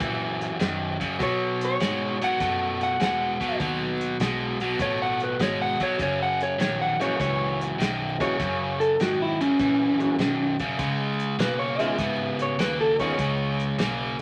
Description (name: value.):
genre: electric blues shuffle.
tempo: 100 BPM.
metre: 4/4.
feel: swing 68% on 8ths.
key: F# mixolydian.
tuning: A4 = 440 Hz.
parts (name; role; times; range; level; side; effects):
crunchy overdriven guitar; riff; 0.0-14.2 s; F#2 to B3; -29 LUFS; equal; none.
vintage muted fingered electric bass; bass; 0.0-14.2 s; F#1 to C#3; -36 LUFS; equal; none.
warm soul drum kit; drums; 0.0-14.2 s; hi-hat, kick drum, snare drum; -32 LUFS; equal; none.
electric guitar through a small old amp; melody; 1.2-14.2 s; C#4 to F#5; -28 LUFS; equal; none.
tonewheel organ; accompaniment; 7.0-14.2 s; D#3 to F#4; -33 LUFS; equal; slow rotary speaker, overdrive.
room: wet studio ambience, RT60 0.5 s.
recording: vinyl crackle.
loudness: -25 LUFS.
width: mono.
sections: 0.0-14.2 A section.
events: clean electric guitar solo 0.0-14.2.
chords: 0.0 F#7; 1.2 B7; 6.0 F#7; 10.8 C#7.